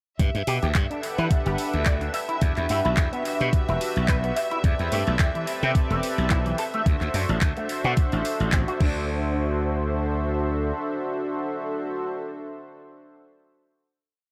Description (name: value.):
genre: nu-disco, nu disco.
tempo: 108 BPM.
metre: 4/4.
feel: swing 55% on 16ths.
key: D mixolydian.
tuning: A4 = 440 Hz.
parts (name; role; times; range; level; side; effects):
rich studio string section; sustained chords; 0.2-8.8 s; E5; -34 LUFS; equal; vintage 12-bit sampler grit, sidechain pumping.
glassy slap bass; bass; 0.2-10.7 s; E1 to E3; -28 LUFS; equal; none.
electronic kick drum; drums; 0.2-8.9 s; none; -24 LUFS; equal; overdrive, small room ambience.
house drum kit; drums; 0.2-8.9 s; crash cymbal, handclaps, hi-hat; -35 LUFS; equal; small room ambience, dub echo.
warm analog pad; accompaniment; 0.5-12.1 s; C4 to G5; -32 LUFS; equal; chorus, sidechain pumping, dub echo.
electric guitar with an envelope filter; riff; 0.5-9.3 s; E3 to E5; -34 LUFS; equal; ensemble chorus, dub echo.
room: light reverb.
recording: echo-heavy mix.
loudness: -25 LUFS.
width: mono.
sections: 0.2-9.1 drop; 9.1-11.3 final hit.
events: drop 0.2-9.1.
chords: 0.2 Gmaj9; 2.1 Em9; 6.9 D9.